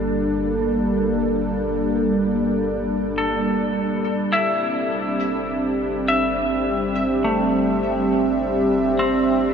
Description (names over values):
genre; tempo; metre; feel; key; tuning
ambient; 52 BPM; 4/4; straight; G dorian; A4 = 444 Hz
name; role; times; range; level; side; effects
warm analog pad; sustained chords; 0.0-9.5 s; G3 to E5; -21 LUFS; right 1 dB; chorus
semi-hollow electric guitar; arpeggios; 0.0-9.5 s; A3 to E5; -24 LUFS; left 1 dB; tape echo
round analog bass; bass; 0.0-9.5 s; G1; -36 LUFS; equal; none
organ-like drone; drone; 0.0-9.5 s; G3 to D4; -26 LUFS; left 1 dB; ensemble chorus, built-in reverb
room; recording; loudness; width
wet huge ambient reverb, RT60 8.8 s; none; -19 LUFS; side -7 dB against mid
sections
0.0-9.5 A section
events
fade-out on analog synth bass 0.0-9.5; filter sweep on analog synth pad 0.0-9.5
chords
0.0 Gmadd9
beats
0.87 2.02 3.17 | 4.33 5.49 6.65 7.82 | 8.99